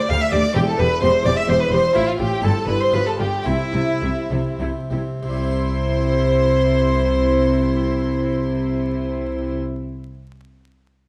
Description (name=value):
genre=classical, baroque-style concerto movement with solo episodes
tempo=92-130 BPM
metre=3/4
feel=straight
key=C major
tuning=A4 = 442 Hz
part: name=rich studio violin section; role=melody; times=0.0-9.6 s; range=E5 to F6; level=-33 LUFS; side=equal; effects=none
part: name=rich violin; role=melody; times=0.0-9.6 s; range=E4 to F5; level=-25 LUFS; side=equal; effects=none
part: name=rich chamber violin section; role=second line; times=0.0-9.6 s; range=E4 to F5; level=-29 LUFS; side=equal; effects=none
part: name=harpsichord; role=accompaniment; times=0.0-9.8 s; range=D2 to C5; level=-32 LUFS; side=equal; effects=none
part: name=rich chamber viola section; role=accompaniment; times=0.1-9.6 s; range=E4 to G4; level=-32 LUFS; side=equal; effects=none
part: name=dark chamber double bass section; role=bass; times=0.1-9.6 s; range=E1 to D2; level=-27 LUFS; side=equal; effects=none
part: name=rich chamber cello section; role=bass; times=0.1-9.6 s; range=D2 to C3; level=-26 LUFS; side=equal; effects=none
room=wet recital hall reverb, RT60 1.5 s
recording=dark, warm production, vinyl crackle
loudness=-20 LUFS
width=mono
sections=0.0-5.2 A section; 5.2-9.1 B section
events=slowing down 1.3-5.2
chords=0.0 G5/D; 0.6 C/E; 2.0 F/A; 2.4 C/G; 2.9 G7; 3.5 C